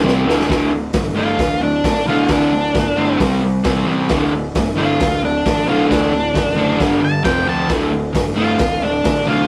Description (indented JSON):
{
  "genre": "garage rock duo or trio",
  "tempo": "133 BPM",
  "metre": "4/4",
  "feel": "straight",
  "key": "unclear",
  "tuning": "A4 = 439 Hz",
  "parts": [
    { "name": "raw garage guitar", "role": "riff", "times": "0.0-9.5 s", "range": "D2 to C4", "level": "-20 LUFS", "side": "equal", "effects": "overdrive" },
    { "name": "fuzz picked electric bass", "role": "bass", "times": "0.0-9.5 s", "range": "D1 to D2", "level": "-28 LUFS", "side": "equal", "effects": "overdrive" },
    { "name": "raw garage drum kit", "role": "drums", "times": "0.1-9.2 s", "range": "hi-hat, kick drum, snare drum", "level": "-23 LUFS", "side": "equal", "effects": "none" },
    { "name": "octave-fuzz lead guitar", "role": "melody", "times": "1.2-9.5 s", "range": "D4 to A5", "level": "-21 LUFS", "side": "equal", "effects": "distortion" }
  ],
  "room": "moderate studio reverb, RT60 0.5 s",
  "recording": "rough rehearsal-room recording",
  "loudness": "-17 LUFS",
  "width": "mono",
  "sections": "0.5-9.5 A section",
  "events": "drum fill 0.0-0.5",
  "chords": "0.5 D5; 3.2 C5; 4.1 D; 6.8 G5; 7.2 F5; 7.7 D5",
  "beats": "0.04 | 0.49 0.94 1.39 1.84 | 2.29 2.75 3.20 3.65 | 4.10 4.55 5.00 5.45 | 5.90 6.35 6.80 7.25 | 7.70 8.15 8.60 9.05"
}